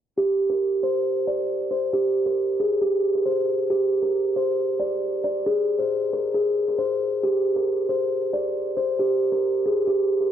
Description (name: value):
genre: hip hop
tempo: 136 BPM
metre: 4/4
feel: half-time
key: unclear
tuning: A4 = 439 Hz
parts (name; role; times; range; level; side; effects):
- buzzing kalimba; melody; 0.2-10.3 s; G4 to D5; -21 LUFS; equal; analog delay
room: light reverb, studio ambience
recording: dry, gritty hardware recording, transformer saturation, low-pass filter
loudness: -21 LUFS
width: side -10 dB against mid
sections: 0.2-10.3 A section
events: filter sweep 0.2-10.3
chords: none